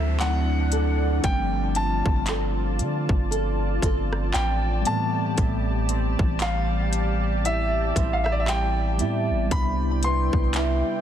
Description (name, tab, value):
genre	contemporary R&B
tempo	58 BPM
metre	4/4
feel	swing 58% on 16ths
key	unclear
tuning	A4 = 440 Hz
part	clear baby grand piano	melody	0.0-11.0 s	D5 to C6	-29 LUFS	left 1 dB	ping-pong delay
part	mellow tine electric piano	accompaniment	0.0-11.0 s	E3 to E4	-31 LUFS	left 1 dB	medium stereo tremolo
part	lush unison pad	sustained chords	0.0-11.0 s	C4 to A5	-32 LUFS	equal	chorus, sidechain pumping
part	nylon-string guitar	arpeggios	0.0-11.0 s	A2 to A4	-30 LUFS	right 3 dB	ping-pong delay
part	long sustained 808-style bass	bass	0.0-10.8 s	G1 to D3	-25 LUFS	equal	none
part	downlifter	sound effects	0.0-5.4 s	none	-44 LUFS	left 1 dB	none
part	trap drum kit	drums	0.2-10.8 s	handclaps, hi-hat, kick drum, rim click	-26 LUFS	equal	soft clipping on snare
room	little or no reverb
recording	dense, heavily limited modern master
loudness	-21 LUFS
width	side -10 dB against mid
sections	0.0-11.0 A section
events	none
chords	0.2 D7; 1.2 G9sus4; 4.9 Am7; 9.5 Cmaj7